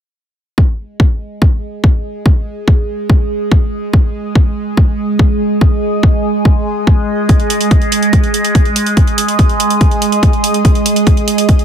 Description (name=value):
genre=psychedelic trance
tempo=143 BPM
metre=4/4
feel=straight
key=unclear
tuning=A4 = 440 Hz
part: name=overtone-sweeping drone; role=sustained chords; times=1.3-11.6 s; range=G#3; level=-17 LUFS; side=right 3 dB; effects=chorus, built-in reverb, sidechain pumping
part: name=electronic kick drum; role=drums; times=0.6-11.6 s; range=none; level=-10 LUFS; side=equal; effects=none
part: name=granular cloud pad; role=texture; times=2.0-11.6 s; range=G#3 to D#6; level=-22 LUFS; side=equal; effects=built-in reverb, sidechain pumping
part: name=electronic hi-hat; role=drums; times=7.3-11.6 s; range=none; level=-19 LUFS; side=right 4 dB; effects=none
room=little or no reverb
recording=none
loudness=-10 LUFS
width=side -9 dB against mid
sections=0.6-11.6 A section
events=fade-in on ambient pad 0.6-11.6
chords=0.6 G#5